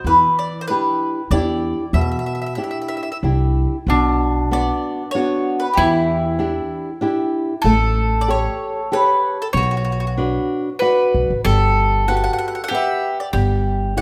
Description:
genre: italian folk, Italian serenade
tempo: 95 BPM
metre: 3/4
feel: straight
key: E minor, B minor from 3.9 s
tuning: A4 = 439 Hz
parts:
  - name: mandolin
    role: melody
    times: 0.0-14.0 s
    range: F#4 to F#5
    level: -23 LUFS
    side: equal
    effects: none
  - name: upright bass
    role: bass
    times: 0.0-14.0 s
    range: G1 to E2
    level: -22 LUFS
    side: equal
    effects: none
  - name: flamenco guitar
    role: accompaniment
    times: 0.1-14.0 s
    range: B2 to F#5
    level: -24 LUFS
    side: equal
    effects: none
  - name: bowl-back mandolin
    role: second line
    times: 3.9-14.0 s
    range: D4 to C#5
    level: -23 LUFS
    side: equal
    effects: none
room: light reverb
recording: none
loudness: -19 LUFS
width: mono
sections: 0.0-3.9 A section; 3.9-14.0 B section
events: none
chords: 0.0 Em7; 3.9 Bm; 5.8 Em7; 7.7 A7; 9.5 Bm; 11.4 Gmaj7; 13.3 N.C.

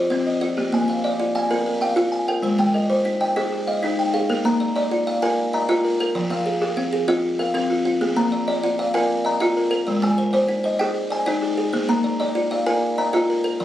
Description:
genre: southern african traditional, mbira-style interlocking cycle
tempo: 129 BPM (dotted quarters)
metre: 12/8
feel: straight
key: Bb mixolydian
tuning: A4 = 440 Hz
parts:
  - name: buzzing kalimba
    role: arpeggios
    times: 0.0-13.6 s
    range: F3 to Bb5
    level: -21 LUFS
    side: left 1 dB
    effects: none
  - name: kalimba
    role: arpeggios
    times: 0.0-13.6 s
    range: F3 to Ab5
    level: -24 LUFS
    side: right 1 dB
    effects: none
room: moderate small room reverb, RT60 0.5 s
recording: recorded on a phone in the room, studio ambience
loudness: -19 LUFS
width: side -12 dB against mid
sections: 0.0-4.3 A section; 4.3-13.6 B section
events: none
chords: 0.0 F5; 0.6 Bb; 2.4 Ab; 4.3 Bb; 6.2 Fm; 8.0 Bb; 9.9 Ab; 11.7 Bb

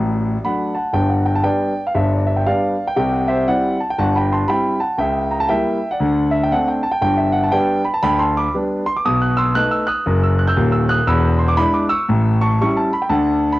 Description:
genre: jazz, stride piano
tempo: 118 BPM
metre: 4/4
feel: swing 63% on 8ths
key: G major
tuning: A4 = 440 Hz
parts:
  - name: warm concert grand piano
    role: solo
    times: 0.0-13.6 s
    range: D#1 to G6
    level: -15 LUFS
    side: equal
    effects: cassette tape
room: light reverb, small room ambience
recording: home recording on cassette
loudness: -15 LUFS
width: side -17 dB against mid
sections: 0.9-13.6 A section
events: none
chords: 0.0 D; 0.9 G; 3.0 C; 5.0 C#dim7; 6.0 D5; 7.0 G; 9.1 B7; 11.1 E7; 12.1 A7

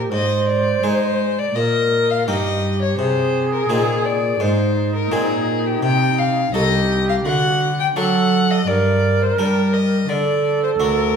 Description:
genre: classical, baroque-style sonata movement with continuo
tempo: 84 BPM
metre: 4/4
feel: straight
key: unclear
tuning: A4 = 438 Hz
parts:
  - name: rich violin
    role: melody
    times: 0.0-11.2 s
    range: G4 to G5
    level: -21 LUFS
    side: left 5 dB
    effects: none
  - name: mellow hollow silver concert flute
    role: second line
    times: 0.0-11.2 s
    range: Eb4 to C5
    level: -21 LUFS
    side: right 2 dB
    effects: none
  - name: harpsichord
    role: accompaniment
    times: 0.0-11.2 s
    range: C2 to A4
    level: -24 LUFS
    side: left 1 dB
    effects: none
  - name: dark cello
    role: bass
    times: 0.0-11.2 s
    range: C2 to Ab3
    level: -21 LUFS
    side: right 1 dB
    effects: none
room: wet recital hall reverb, RT60 1.4 s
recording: recorded in a church or concert hall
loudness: -16 LUFS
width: side -6 dB against mid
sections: 0.0-11.2 A section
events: none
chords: 0.1 Ab; 1.6 Eb/Bb; 3.0 Ab; 5.8 Adim/C; 7.3 D; 8.7 Gm; 10.1 D

